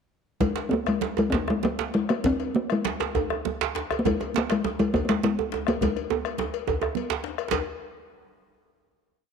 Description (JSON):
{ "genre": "west african traditional, West African drum ensemble", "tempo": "130-149 BPM (dotted quarters)", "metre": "12/8", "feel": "straight", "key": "Ab major pentatonic", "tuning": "A4 = 440 Hz", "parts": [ { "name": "talking drum", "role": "melody", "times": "0.4-7.2 s", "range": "Ab3 to C4", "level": "-25 LUFS", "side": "left 2 dB", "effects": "none" }, { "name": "bombo", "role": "percussion", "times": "0.4-7.6 s", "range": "none", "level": "-34 LUFS", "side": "left 6 dB", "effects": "none" }, { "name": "congas", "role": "percussion", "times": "0.4-7.6 s", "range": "none", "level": "-34 LUFS", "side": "right 13 dB", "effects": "none" }, { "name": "cowbell", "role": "percussion", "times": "0.4-7.7 s", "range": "none", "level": "-35 LUFS", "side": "left 13 dB", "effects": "none" }, { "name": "djembe", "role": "percussion", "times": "0.4-7.6 s", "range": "none", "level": "-36 LUFS", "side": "left 6 dB", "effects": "none" }, { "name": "djembe", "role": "percussion", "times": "0.4-7.6 s", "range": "none", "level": "-29 LUFS", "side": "right 9 dB", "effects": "none" } ], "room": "moderate plate reverb, RT60 2.4 s", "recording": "1960s-style stereo with parts hard left and right", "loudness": "-24 LUFS", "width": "side -6 dB against mid", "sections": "0.4-7.5 A section; 7.5-9.2 final hit", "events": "speeding up 0.4-9.2; drum fill 5.8-7.5", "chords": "none" }